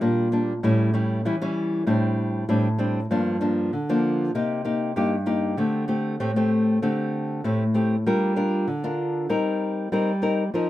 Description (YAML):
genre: samba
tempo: 97 BPM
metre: 4/4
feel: straight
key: G minor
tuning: A4 = 439 Hz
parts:
  - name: nylon-string guitar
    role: solo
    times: 0.0-10.7 s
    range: G2 to Bb4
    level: -21 LUFS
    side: equal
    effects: none
room: light reverb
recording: minimal, uncompressed stereo recording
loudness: -21 LUFS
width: side -14 dB against mid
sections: 0.0-10.7 A section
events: none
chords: 0.0 Ebmaj7 (rootless); 0.6 A7; 1.9 D7sus4/A; 3.1 Gm7; 4.3 Cm7; 5.6 D7sus4; 8.1 Gm7; 9.3 Eb6/G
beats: 0.01 | 0.63 1.25 1.87 2.49 | 3.11 3.73 4.35 4.96 | 5.58 6.20 6.82 7.44 | 8.06 8.68 9.30 9.92 | 10.54